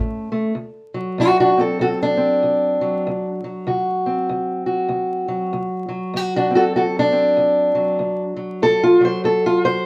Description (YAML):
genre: blues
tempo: 97 BPM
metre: 4/4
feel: swing 60% on 8ths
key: D mixolydian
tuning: A4 = 440 Hz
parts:
  - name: fingerpicked steel-string acoustic guitar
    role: melody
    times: 0.0-9.9 s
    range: D2 to C5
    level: -19 LUFS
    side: equal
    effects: none
room: wet studio reverb, RT60 0.6 s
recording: band playing live in one room, vinyl crackle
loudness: -19 LUFS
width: mono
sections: 0.5-9.9 A section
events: steel-string acoustic guitar solo 0.5-9.9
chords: 0.0 N.C.; 0.5 D7